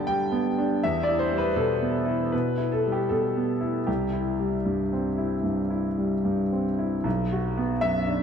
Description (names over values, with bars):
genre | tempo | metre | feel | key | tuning
neoclassical minimalist piano | 74-81 BPM | 4/4 | rubato | unclear | A4 = 439 Hz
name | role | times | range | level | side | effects
warm grand piano | solo | 0.0-8.2 s | B1 to B5 | -23 LUFS | equal | none
room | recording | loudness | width
moderate plate reverb, RT60 2.6 s | heard from further back in the room | -23 LUFS | side -7 dB against mid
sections
0.0-7.0 A section; 7.0-8.2 A section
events
none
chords
0.0 G; 0.8 Em; 3.9 C; 7.0 Bm